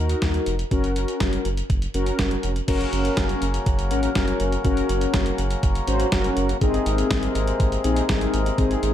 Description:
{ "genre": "synth-pop", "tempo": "122 BPM", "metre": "4/4", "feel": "straight", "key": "unclear", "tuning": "A4 = 440 Hz", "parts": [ { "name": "mellow synth brass", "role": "accompaniment", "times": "0.0-8.9 s", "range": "C4 to C5", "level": "-25 LUFS", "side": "left 2 dB", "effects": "chorus" }, { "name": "round analog bass", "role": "bass", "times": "0.0-8.9 s", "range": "F1 to Eb2", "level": "-25 LUFS", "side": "equal", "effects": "none" }, { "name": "clean 12-bit digital drum machine", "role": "drums", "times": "0.1-8.9 s", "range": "crash cymbal, hi-hat, kick drum, snare drum", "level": "-25 LUFS", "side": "equal", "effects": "none" }, { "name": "mellow accordion", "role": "sustained chords", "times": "2.7-8.9 s", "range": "C3 to Bb3", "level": "-27 LUFS", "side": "left 2 dB", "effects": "none" } ], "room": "light reverb", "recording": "dark, warm production", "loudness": "-20 LUFS", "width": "side -11 dB against mid", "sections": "0.0-2.7 A section; 2.7-8.9 B section", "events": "none", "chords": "0.0 Ebm; 0.7 Gb; 6.6 Abadd9", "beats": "0.22 | 0.71 1.21 1.70 2.19 | 2.68 3.17 3.66 4.16 | 4.65 5.14 5.63 6.12 | 6.62 7.11 7.60 8.09 | 8.58" }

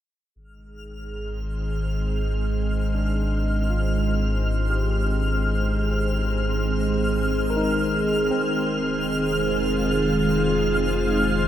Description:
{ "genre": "ambient", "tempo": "free time", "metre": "none", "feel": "none", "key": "Ab major", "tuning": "A4 = 441 Hz", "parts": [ { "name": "overtone-sweeping drone", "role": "drone", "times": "0.8-11.5 s", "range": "Ab3", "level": "-27 LUFS", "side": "right 3 dB", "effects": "chorus, built-in reverb" }, { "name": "soft additive organ-like pad", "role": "sustained chords", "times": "1.1-11.5 s", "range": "Eb3 to C5", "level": "-27 LUFS", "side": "equal", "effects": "ensemble chorus, built-in reverb" }, { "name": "warm sub bass", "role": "bass", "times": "0.4-11.5 s", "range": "F1 to Ab1", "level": "-26 LUFS", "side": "equal", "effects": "none" }, { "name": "twinkling granular texture", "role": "texture", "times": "0.8-11.5 s", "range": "F6", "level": "-30 LUFS", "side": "left 1 dB", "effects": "built-in reverb, ensemble chorus" }, { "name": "barky tine electric piano", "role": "arpeggios", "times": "2.9-11.5 s", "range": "C4 to Bb4", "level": "-31 LUFS", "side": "left 2 dB", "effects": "analog chorus, analog delay" } ], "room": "moderate huge ambient reverb, RT60 7.5 s", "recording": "dreamy mix soaked in reverb", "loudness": "-21 LUFS", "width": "side -11 dB against mid", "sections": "0.4-11.5 A section", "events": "fade-in on ambient pad 0.4-11.5; fade-in on tine electric piano 0.4-11.5", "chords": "0.4 Ab; 8.4 Fm7", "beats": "free time" }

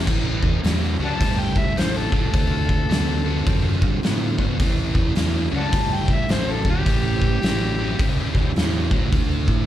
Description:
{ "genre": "blues rock power trio and southern rock", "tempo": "106 BPM", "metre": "4/4", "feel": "swing 62% on 8ths", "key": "A mixolydian", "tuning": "A4 = 439 Hz", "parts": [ { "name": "tonewheel organ", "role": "sustained chords", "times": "0.0-9.7 s", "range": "C4 to C#5", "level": "-37 LUFS", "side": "right 4 dB", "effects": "none" }, { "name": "sludgy distorted guitar", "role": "riff", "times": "0.0-9.7 s", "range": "A2 to C4", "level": "-25 LUFS", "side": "right 1 dB", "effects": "overdrive, slapback echo" }, { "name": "fuzz fingered electric bass", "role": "bass", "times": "0.0-9.7 s", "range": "G1 to A2", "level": "-24 LUFS", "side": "equal", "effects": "overdrive" }, { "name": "oversized low-tuned drum kit", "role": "drums", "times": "0.1-9.6 s", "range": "crash cymbal, hi-hat, kick drum, snare drum", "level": "-22 LUFS", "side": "equal", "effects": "none" }, { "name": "overdriven harmonica", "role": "melody", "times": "1.0-8.3 s", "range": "G4 to A5", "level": "-27 LUFS", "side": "left 3 dB", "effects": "slapback echo" } ], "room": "little or no reverb", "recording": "live gig heard through the venue's PA, club reverb", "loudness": "-18 LUFS", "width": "side -12 dB against mid", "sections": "0.1-9.7 A section", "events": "none", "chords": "0.1 A7#9; 2.3 D7#9; 4.6 A7#9; 9.1 D7#9", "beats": "| 0.07 0.64 1.20 1.77 | 2.33 2.90 3.46 4.03 | 4.60 5.16 5.73 6.30 | 6.86 7.43 8.00 8.56 | 9.13" }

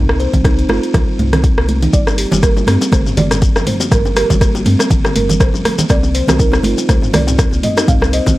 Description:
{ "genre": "afro house", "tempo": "121 BPM", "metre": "4/4", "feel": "swing 56% on 16ths", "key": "G minor", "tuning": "A4 = 439 Hz", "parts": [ { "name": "buzzing kalimba", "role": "arpeggios", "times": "0.0-8.4 s", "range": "D3 to C5", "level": "-19 LUFS", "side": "equal", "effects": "sidechain pumping, low-pass filter, tape echo" }, { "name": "warm sub bass", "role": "bass", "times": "0.0-8.4 s", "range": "G1 to G2", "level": "-18 LUFS", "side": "equal", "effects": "sidechain pumping" }, { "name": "deep house drum kit", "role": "drums", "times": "0.1-8.4 s", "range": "hi-hat, rim click, toms", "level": "-19 LUFS", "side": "equal", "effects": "overdrive" }, { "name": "electronic kick drum", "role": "drums", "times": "0.3-8.4 s", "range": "none", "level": "-14 LUFS", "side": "equal", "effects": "overdrive" }, { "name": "congas", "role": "percussion", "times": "0.3-8.4 s", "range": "none", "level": "-19 LUFS", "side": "right 2 dB", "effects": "none" }, { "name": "folk marimba with soft mallets", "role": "melody", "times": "1.9-8.4 s", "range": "Bb4 to F5", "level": "-22 LUFS", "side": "right 3 dB", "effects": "tape echo" }, { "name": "shekere", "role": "percussion", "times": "1.9-8.4 s", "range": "none", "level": "-24 LUFS", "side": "left 4 dB", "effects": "none" }, { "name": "bongos", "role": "percussion", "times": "2.1-8.4 s", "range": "none", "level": "-24 LUFS", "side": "left 2 dB", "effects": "none" } ], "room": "studio ambience", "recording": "dry, gritty hardware recording", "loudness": "-11 LUFS", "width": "side -17 dB against mid", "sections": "0.0-8.4 A section", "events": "none", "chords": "0.0 N.C.; 1.9 Gm; 5.9 C7sus2", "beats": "0.45 0.94 1.44 | 1.94 2.43 2.93 3.42 | 3.92 4.41 4.91 5.41 | 5.90 6.40 6.89 7.39 | 7.88" }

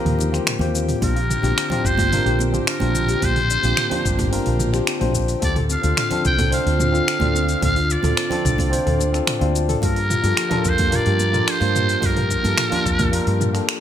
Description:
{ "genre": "sunset chillout", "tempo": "109 BPM", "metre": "4/4", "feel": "straight", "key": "unclear", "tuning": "A4 = 440 Hz", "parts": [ { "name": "tine electric piano", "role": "accompaniment", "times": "0.0-13.8 s", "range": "Bb3 to A5", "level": "-25 LUFS", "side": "moving between left 7 dB and right 7 dB", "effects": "auto-pan, ping-pong delay" }, { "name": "airy breathy pad", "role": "sustained chords", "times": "0.0-13.8 s", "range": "D3 to G4", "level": "-29 LUFS", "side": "left 1 dB", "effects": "chorus, vintage 12-bit sampler grit" }, { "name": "soft round pluck", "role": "arpeggios", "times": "0.0-13.7 s", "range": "C4 to Bb4", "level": "-30 LUFS", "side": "left 4 dB", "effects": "wide subtle chorus, ping-pong delay" }, { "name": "woody fretless electric bass", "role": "bass", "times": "0.1-13.6 s", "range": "G1 to G2", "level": "-22 LUFS", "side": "equal", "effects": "none" }, { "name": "deep house drum kit", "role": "drums", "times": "0.1-13.8 s", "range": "finger snaps, hi-hat, shaker, toms", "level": "-25 LUFS", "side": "right 1 dB", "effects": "overdrive" }, { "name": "congas", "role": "percussion", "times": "0.2-13.5 s", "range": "none", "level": "-32 LUFS", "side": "right 3 dB", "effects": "none" }, { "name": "trumpet with metal mute", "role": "melody", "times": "1.0-13.7 s", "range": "Bb4 to G5", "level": "-23 LUFS", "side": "equal", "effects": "ping-pong delay" }, { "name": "electronic kick drum", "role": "drums", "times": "1.0-13.1 s", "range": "none", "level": "-24 LUFS", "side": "equal", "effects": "overdrive" } ], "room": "moderate plate reverb, RT60 1.6 s", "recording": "bright 1980s-style digital production", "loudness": "-17 LUFS", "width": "side -10 dB against mid", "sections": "0.0-13.8 A section", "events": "none", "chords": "0.0 Eb69; 1.0 Bb69; 5.4 Dm7; 9.8 Gm7", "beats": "0.47 | 1.02 1.57 2.12 2.67 | 3.22 3.77 4.32 4.87 | 5.42 5.97 6.53 7.08 | 7.63 8.18 8.73 9.28 | 9.83 10.38 10.93 11.48 | 12.03 12.58 13.13 13.68" }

